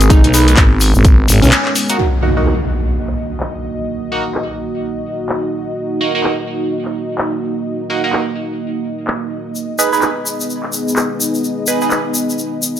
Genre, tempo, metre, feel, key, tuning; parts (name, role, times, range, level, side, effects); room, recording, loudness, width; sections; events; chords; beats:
bass house; 127 BPM; 4/4; swing 60% on 16ths; Eb minor; A4 = 441 Hz
glassy wavetable pluck; melody; 0.0-1.6 s; Db4 to Eb4; -20 LUFS; right 1 dB; chorus, tape echo
dark analog pad; sustained chords; 0.0-12.8 s; Ab3 to Eb5; -20 LUFS; equal; chorus, sidechain pumping
growling FM bass; bass; 0.0-1.5 s; Ab1 to Cb2; -11 LUFS; equal; overdrive, sidechain pumping
house drum kit; drums; 0.0-12.0 s; crash cymbal, handclaps, hi-hat; -18 LUFS; left 1 dB; low-pass filter on hats, low-pass filter on snare, low-pass filter on cymbals, low-pass filter on room
egg shaker; percussion; 0.0-2.0, 9.6-12.8 s; -20 LUFS; left 3 dB
electronic kick drum; drums; 0.1-1.2 s; -9 LUFS; equal
band-passed chord stab; stabs; 0.3-12.0 s; Bb3 to Cb5; -19 LUFS; right 3 dB; phaser, sidechain pumping, tape echo
impact; sound effects; 2.0-3.9 s; -19 LUFS; equal
light reverb; -13 LUFS; side -11 dB against mid
0.0-2.0 A section; 2.0-12.8 B section
filter sweep on FM bass 0.0-2.0; break 1.5-2.0; band accent 1.5; impact 2.0-3.9
0.0 Abm; 2.0 Ebm; 9.6 Abm
| 0.10 0.57 1.05 1.52 | 1.99 2.46 2.94 3.41 | 3.88 4.35 4.83 5.30 | 5.77 6.24 6.71 7.19 | 7.66 8.13 8.61 9.08 | 9.55 10.02 10.49 10.97 | 11.44 11.91 12.38